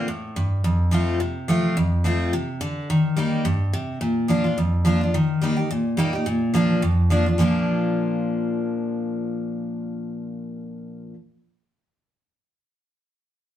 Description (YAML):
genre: bluegrass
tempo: 214 BPM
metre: 4/4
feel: swing 55% on 8ths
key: Bb major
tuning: A4 = 438 Hz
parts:
  - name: picked steel-string acoustic guitar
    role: solo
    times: 0.0-11.2 s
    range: F2 to G4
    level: -20 LUFS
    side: equal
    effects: none
room: wet studio reverb, RT60 0.7 s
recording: heard from further back in the room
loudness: -20 LUFS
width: side -11 dB against mid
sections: 0.0-5.1 A section; 5.1-7.4 B section; 7.4-9.6 C section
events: none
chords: 0.0 N.C.; 0.6 F; 2.9 Eb; 4.0 Bb; 5.1 Eb; 6.3 Bb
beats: 0.08 0.36 | 0.64 0.92 1.21 1.49 | 1.77 2.05 2.33 2.61 | 2.89 3.17 3.45 3.73 | 4.01 4.29 4.58 4.86 | 5.14 5.42 5.70 5.98 | 6.26 6.54 6.82 7.10 | 7.38 7.67 7.95 8.23 | 8.51 8.79 9.07 9.36